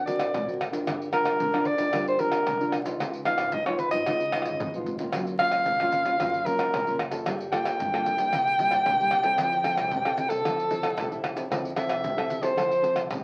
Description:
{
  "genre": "samba and choro",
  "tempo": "113 BPM",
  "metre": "4/4",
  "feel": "straight",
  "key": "F major",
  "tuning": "A4 = 440 Hz",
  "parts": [
    { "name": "breathy soprano saxophone", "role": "melody", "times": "0.0-13.1 s", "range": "A4 to G5", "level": "-27 LUFS", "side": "equal", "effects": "none" },
    { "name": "nylon-string guitar", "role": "accompaniment", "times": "0.0-13.2 s", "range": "G2 to Bb4", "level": "-34 LUFS", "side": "equal", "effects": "none" },
    { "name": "upright bass", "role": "bass", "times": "0.0-13.2 s", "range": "G1 to G2", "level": "-50 LUFS", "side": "equal", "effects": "none" },
    { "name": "maracas, pandeiro, surdo and tamborim", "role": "percussion", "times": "0.1-13.2 s", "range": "none", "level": "-34 LUFS", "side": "equal", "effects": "none" }
  ],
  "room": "wet club reverb, RT60 0.7 s",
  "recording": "very old 78 rpm record, vinyl crackle",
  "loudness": "-26 LUFS",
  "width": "mono",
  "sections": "0.0-13.2 A section",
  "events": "drum fill 4.3-5.1",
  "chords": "0.0 D7b13; 0.9 Gm7; 3.0 Db9; 5.1 Gbmaj7; 7.3 Gm9; 8.3 C7; 9.4 Fmaj7",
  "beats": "0.33 | 0.87 1.40 1.93 2.47 | 3.00 3.53 4.07 4.60 | 5.13 5.66 6.20 6.73 | 7.26 7.79 8.32 8.86 | 9.38 9.92 10.45 10.98 | 11.51 12.04 12.57 13.10"
}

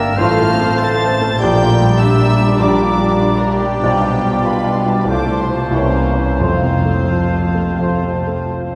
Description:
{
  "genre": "classical",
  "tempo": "85-101 BPM",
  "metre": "4/4",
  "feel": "rubato",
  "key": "F major",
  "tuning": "A4 = 440 Hz",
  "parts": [
    { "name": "clear concert grand piano", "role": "melody", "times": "0.0-8.8 s", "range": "A1 to D5", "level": "-20 LUFS", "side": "equal", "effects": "none" },
    { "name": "warm studio violin section", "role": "melody", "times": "0.0-8.4 s", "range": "Db5 to A6", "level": "-29 LUFS", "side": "equal", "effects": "none" },
    { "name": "clear oboe", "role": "second line", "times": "0.0-8.8 s", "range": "Bb4 to D5", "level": "-28 LUFS", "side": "equal", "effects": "none" },
    { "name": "clear studio violin section", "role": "second line", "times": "0.0-8.4 s", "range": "Db4 to A5", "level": "-29 LUFS", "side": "equal", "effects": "none" },
    { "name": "dark clarinet", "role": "second line", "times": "0.0-8.8 s", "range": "C4 to F4", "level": "-30 LUFS", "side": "equal", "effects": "none" },
    { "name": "mellow hollow concert flute", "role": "second line", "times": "0.0-8.8 s", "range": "G5 to Bb5", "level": "-27 LUFS", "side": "equal", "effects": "none" },
    { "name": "mellow bassoon", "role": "accompaniment", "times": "0.0-8.8 s", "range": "E3 to Bb3", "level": "-29 LUFS", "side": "equal", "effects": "none" },
    { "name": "warm studio viola section", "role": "accompaniment", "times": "0.0-8.8 s", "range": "A3 to Bb4", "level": "-27 LUFS", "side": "equal", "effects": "none" },
    { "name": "dark studio double bass section", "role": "bass", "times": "0.0-8.8 s", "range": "F1 to C2", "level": "-23 LUFS", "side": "equal", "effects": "none" },
    { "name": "warm studio cello section", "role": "bass", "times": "0.0-8.8 s", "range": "F2 to C3", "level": "-25 LUFS", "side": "equal", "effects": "none" },
    { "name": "warm French horn section", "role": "sustained chords", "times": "0.2-8.0 s", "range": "G3 to F4", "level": "-28 LUFS", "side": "equal", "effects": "none" },
    { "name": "mellow trumpet section", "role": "stabs", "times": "0.2-8.0 s", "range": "C5 to D5", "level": "-29 LUFS", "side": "equal", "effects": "none" },
    { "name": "timpani", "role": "percussion", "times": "5.1-7.4 s", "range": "F2 to C3", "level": "-27 LUFS", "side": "equal", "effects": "none" }
  ],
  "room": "wet cathedral reverb, RT60 4.2 s",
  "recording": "recorded in a church or concert hall",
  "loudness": "-15 LUFS",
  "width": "mono",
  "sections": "0.0-8.8 A section",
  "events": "none",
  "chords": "0.2 F/A; 1.4 Gm/Bb; 3.8 G7/B; 5.1 F/C; 5.7 C7b9; 6.4 F",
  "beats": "0.17 0.79 | 1.39 1.99 2.59 3.21 | 3.83 4.45 5.08 5.73 | 6.41 7.11 7.80 8.48"
}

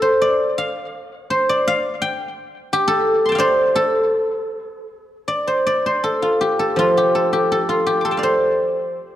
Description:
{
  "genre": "chinese traditional, Chinese solo plucked strings",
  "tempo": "78-86 BPM",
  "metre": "2/4",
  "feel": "rubato",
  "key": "A jue mode",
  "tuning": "A4 = 443 Hz",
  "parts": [
    { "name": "guzheng", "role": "solo", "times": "0.0-9.2 s", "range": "F3 to D6", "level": "-16 LUFS", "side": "equal", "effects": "tape echo" }
  ],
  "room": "light reverb",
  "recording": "dark, warm production",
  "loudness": "-16 LUFS",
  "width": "side -12 dB against mid",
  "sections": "0.0-5.3 A section; 5.3-9.2 B section",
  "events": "none",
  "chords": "none",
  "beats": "0.21 | 0.94 1.65 | 2.35 3.05 | 3.77 4.51 | 5.27 6.03 | 6.78 7.51 | 8.24 8.98"
}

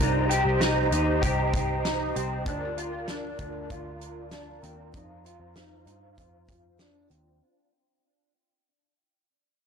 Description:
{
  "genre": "dream pop",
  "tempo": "97 BPM",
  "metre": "4/4",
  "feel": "straight",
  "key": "unclear",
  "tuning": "A4 = 437 Hz",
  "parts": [
    { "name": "phased string machine", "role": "sustained chords", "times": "0.0-7.4 s", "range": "F4 to Bb5", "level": "-30 LUFS", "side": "right 2 dB", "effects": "ensemble chorus, phaser, low-pass filter" },
    { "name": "electric guitar at the edge of break-up", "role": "arpeggios", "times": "0.0-7.4 s", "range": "C4 to G4", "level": "-30 LUFS", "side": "left 2 dB", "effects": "ensemble chorus, low-pass filter, ping-pong delay" },
    { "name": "vintage muted picked electric bass", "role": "bass", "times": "0.0-7.4 s", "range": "C2 to G2", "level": "-31 LUFS", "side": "equal", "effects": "transformer saturation" },
    { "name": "loose indie drum kit", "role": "drums", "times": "0.3-7.2 s", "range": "hi-hat, kick drum, snare drum", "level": "-31 LUFS", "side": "right 1 dB", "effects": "none" }
  ],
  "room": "moderate plate reverb, RT60 2.1 s",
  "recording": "blown-out, overdriven recording, overdrive",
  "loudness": "-24 LUFS",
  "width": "side -6 dB against mid",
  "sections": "0.0-7.4 A section",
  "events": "fade-out 0.0-7.4; filter sweep 0.0-7.4",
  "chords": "0.0 Cm7; 2.5 Bb/D; 4.9 F7sus4",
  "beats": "0.60 1.22 1.84 | 2.46 3.08 3.70 4.32 | 4.93 5.55 6.17 6.79"
}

